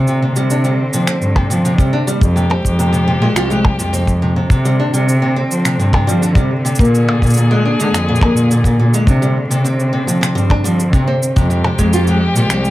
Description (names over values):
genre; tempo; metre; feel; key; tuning
folktronica; 105 BPM; 4/4; straight; unclear; A4 = 444 Hz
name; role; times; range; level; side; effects
warm string quartet; sustained chords; 0.0-12.7 s; D3 to Ab4; -21 LUFS; left 1 dB; none
nylon-string guitar; arpeggios; 0.0-12.7 s; Bb2 to F4; -18 LUFS; equal; tape echo
muted cello; bass; 0.0-12.6 s; C2 to F3; -15 LUFS; equal; none
electronic cabasa, finger snaps and percussion blips; drums; 0.1-12.7 s; none; -22 LUFS; equal; overdrive
kick drum; drums; 1.4-11.9 s; none; -13 LUFS; equal; none
room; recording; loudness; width
light reverb; vinyl crackle; -12 LUFS; side -16 dB against mid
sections
0.0-12.7 A section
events
none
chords
0.0 Csus2; 2.2 Fmadd9; 4.5 Csus2; 6.8 Bb7; 9.1 Csus2; 11.4 Fmadd9